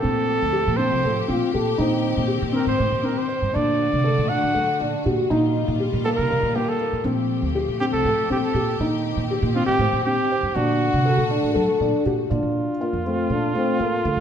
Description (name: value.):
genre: contemporary instrumental, chamber music in an uneven meter.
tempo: 240 BPM (eighths).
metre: 7/8.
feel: straight.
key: Bb major.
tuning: A4 = 440 Hz.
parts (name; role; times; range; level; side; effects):
clear flugelhorn; melody; 0.0-14.2 s; F4 to F#5; -24 LUFS; right 2 dB; none.
clear symphonic string section; sustained chords; 0.0-12.3 s; D3 to G4; -31 LUFS; left 2 dB; none.
felt-muted upright piano; arpeggios; 0.0-14.2 s; A3 to C5; -24 LUFS; left 2 dB; none.
upright bass; bass; 0.0-14.2 s; C2 to F#3; -25 LUFS; right 2 dB; none.
mellow French horn; second line; 1.3-5.9, 11.1-14.2 s; A3 to A4; -26 LUFS; left 2 dB; none.
room: wet recital hall reverb, RT60 1.6 s.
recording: minimal, uncompressed stereo recording.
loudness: -19 LUFS.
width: side -8 dB against mid.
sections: 0.0-12.3 A section; 12.3-14.2 B section.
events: none.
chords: 0.0 Fadd9; 1.8 Cm/Bb; 3.5 D/Bb; 5.3 Ebadd9/Bb; 7.1 Fadd9; 8.8 Cm/Bb; 10.6 D/Bb; 12.3 Bbmaj7.